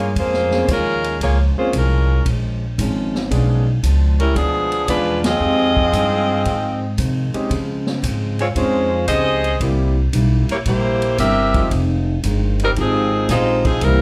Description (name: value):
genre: jazz, big band swing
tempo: 114 BPM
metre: 4/4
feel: swing 68% on 8ths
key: F minor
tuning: A4 = 440 Hz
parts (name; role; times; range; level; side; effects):
- clear saxophone section; melody; 0.0-14.0 s; F3 to E5; -20 LUFS; equal; slapback echo
- upright bass; bass; 0.0-14.0 s; F1 to Db3; -21 LUFS; equal; none
- swinging big-band drum kit; drums; 0.0-14.0 s; hi-hat, kick drum, ride cymbal, snare drum; -29 LUFS; equal; none
- picked steel-string acoustic guitar; accompaniment; 0.2-14.0 s; F2 to E4; -30 LUFS; equal; slapback echo
- clear grand piano; accompaniment; 0.5-13.6 s; F3 to B4; -27 LUFS; equal; slapback echo
- clear trombone section; second line; 13.8-14.0 s; E3 to Bb3; -22 LUFS; equal; none
room: light reverb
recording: live gig heard through the venue's PA, club reverb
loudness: -18 LUFS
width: mono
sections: 0.0-14.0 A section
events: band accent 5.1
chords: 0.0 Bbm7; 3.3 Bdim7; 5.4 Fm7; 7.5 Dbmaj7; 9.6 C7; 11.7 Fm7